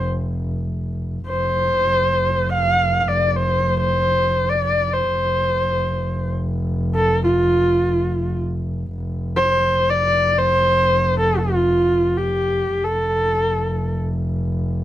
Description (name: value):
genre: mongolian traditional, Mongolian folk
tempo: free time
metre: none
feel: none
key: F gong mode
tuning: A4 = 442 Hz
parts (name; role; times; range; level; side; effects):
- rich horsehead fiddle; melody; 0.0-13.9 s; F4 to F5; -18 LUFS; equal; none
- warm double bass; drone; 0.0-14.8 s; F1; -22 LUFS; equal; none
room: moderate studio reverb, RT60 0.9 s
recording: dark, warm production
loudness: -17 LUFS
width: side -13 dB against mid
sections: 0.0-8.9 A section; 8.9-14.8 A section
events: none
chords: none